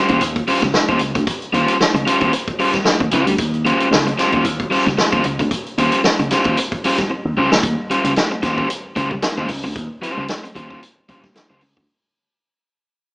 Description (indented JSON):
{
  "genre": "funk",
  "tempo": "113 BPM",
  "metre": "4/4",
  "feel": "swing 56% on 16ths",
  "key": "Eb mixolydian",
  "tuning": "A4 = 439 Hz",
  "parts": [
    { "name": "crunchy overdriven guitar", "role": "accompaniment", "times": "0.0-11.8 s", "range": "G3 to C5", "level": "-18 LUFS", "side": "equal", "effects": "none" },
    { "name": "slap bass with an envelope filter", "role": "bass", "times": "0.1-11.9 s", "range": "Bb1 to Eb2", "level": "-22 LUFS", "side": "equal", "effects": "none" },
    { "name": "vintage drum kit", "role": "drums", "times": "0.1-11.9 s", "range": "hi-hat, kick drum, snare drum", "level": "-20 LUFS", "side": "equal", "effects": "none" }
  ],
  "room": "moderate large studio reverb, RT60 1.3 s",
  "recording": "band playing live in one room, small speaker sound",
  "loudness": "-15 LUFS",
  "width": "side -33 dB against mid",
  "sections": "0.0-7.6 A section; 7.6-11.9 B section",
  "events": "drum fill 7.1-7.6; fade-out 7.6-11.9",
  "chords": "0.0 Eb13"
}